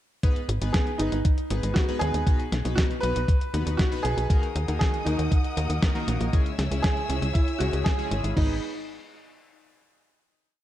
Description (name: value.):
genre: italo disco.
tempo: 118 BPM.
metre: 4/4.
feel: straight.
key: G# minor.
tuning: A4 = 441 Hz.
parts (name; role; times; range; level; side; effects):
chorused polysynth; stabs; 0.2-8.6 s; G#2 to B4; -33 LUFS; left 2 dB; none.
clean 12-bit digital drum machine; drums; 0.2-8.5 s; crash cymbal, hi-hat, snare drum; -31 LUFS; equal; none.
electronic kick drum; drums; 0.2-8.5 s; none; -23 LUFS; equal; none.
tight sequencer bass; bass; 0.5-8.6 s; G#1 to D#2; -26 LUFS; equal; none.
clear baby grand piano; melody; 0.7-8.6 s; D#4 to B4; -30 LUFS; right 2 dB; ping-pong delay.
warm studio string section; sustained chords; 4.3-8.6 s; G#4 to E6; -36 LUFS; left 2 dB; none.
room: light reverb.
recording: dark, warm production.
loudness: -22 LUFS.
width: side -13 dB against mid.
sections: 0.2-8.4 verse; 8.4-10.4 final chord.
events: none.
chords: 0.2 G#m; 2.3 B; 4.3 D#m; 6.3 C#m; 8.4 G#m.